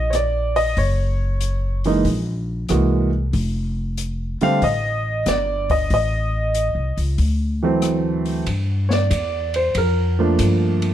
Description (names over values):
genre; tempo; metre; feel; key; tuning
jazz piano trio; 94 BPM; 4/4; swing 68% on 8ths; unclear; A4 = 438 Hz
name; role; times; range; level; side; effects
warm concert grand piano; melody; 0.0-10.9 s; D3 to F5; -20 LUFS; right 2 dB; none
upright bass; bass; 0.0-10.9 s; F1 to G2; -21 LUFS; left 1 dB; none
open jazz drum kit; drums; 0.1-10.9 s; hi-hat, kick drum, ride cymbal, rim click, snare drum; -28 LUFS; left 3 dB; none
room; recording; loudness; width
light reverb; dark, warm production; -18 LUFS; side -11 dB against mid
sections
0.0-8.5 A section; 8.5-10.9 B section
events
none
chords
0.0 Gm (rootless); 0.8 Gb9; 3.3 F6; 5.9 Adim; 7.2 D7; 8.5 Gm7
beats
0.13 | 0.77 1.41 2.06 2.70 | 3.34 3.98 4.62 5.26 | 5.91 6.55 7.19 7.83 | 8.47 9.11 9.75 10.40